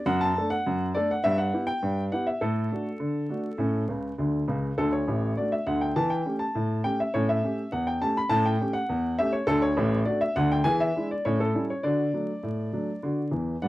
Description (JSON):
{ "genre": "ragtime piano", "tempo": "102 BPM", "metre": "2/4", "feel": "straight", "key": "D major", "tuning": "A4 = 440 Hz", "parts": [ { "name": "warm upright piano", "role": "solo", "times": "0.0-13.7 s", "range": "A1 to B5", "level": "-24 LUFS", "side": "equal", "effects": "none" } ], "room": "light reverb", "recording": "dry, close 1970s-style studio recording, vinyl crackle", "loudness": "-24 LUFS", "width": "side -17 dB against mid", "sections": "0.0-13.7 A section", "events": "upright piano fill 3.9-4.8, 13.3-13.7", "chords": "0.1 D/F#; 1.2 Em/G; 2.4 D/A; 3.6 A; 4.8 D; 6.0 A7/E; 7.1 A7; 9.5 D; 10.6 E7; 11.2 A7; 11.8 D" }